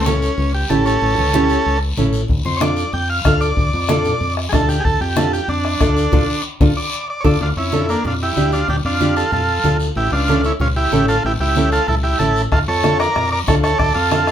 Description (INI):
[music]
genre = latin, cumbia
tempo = 188 BPM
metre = 4/4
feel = straight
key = D harmonic minor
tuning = A4 = 440 Hz
[part]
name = overdriven combo organ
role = melody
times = 0.0-14.3 s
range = Bb3 to G5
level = -19 LUFS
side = right 2 dB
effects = none
[part]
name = fingered electric bass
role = bass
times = 0.0-14.3 s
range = A1 to F2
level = -20 LUFS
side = equal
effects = none
[part]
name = nylon-string guitar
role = accompaniment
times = 0.1-14.3 s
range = C#4 to A4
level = -20 LUFS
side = right 1 dB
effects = none
[part]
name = congas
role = percussion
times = 0.1-14.3 s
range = none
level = -24 LUFS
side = left 1 dB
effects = none
[part]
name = guiro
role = percussion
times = 0.1-14.3 s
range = none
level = -29 LUFS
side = left 4 dB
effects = none
[part]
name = bombo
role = percussion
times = 2.3-7.3, 12.5-14.3 s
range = none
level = -19 LUFS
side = left 1 dB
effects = none
[part]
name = bright trumpet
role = second line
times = 14.3 s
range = F4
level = -28 LUFS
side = left 6 dB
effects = none
[sound]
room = wet small room reverb, RT60 0.5 s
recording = band playing live in one room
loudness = -15 LUFS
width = side -10 dB against mid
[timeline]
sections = 0.0-7.4 A section; 7.4-14.3 B section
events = transistor combo organ solo 0.0-7.4; band accent 6.1-7.4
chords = 0.0 A7; 2.3 Dm; 10.0 A7; 12.5 Dm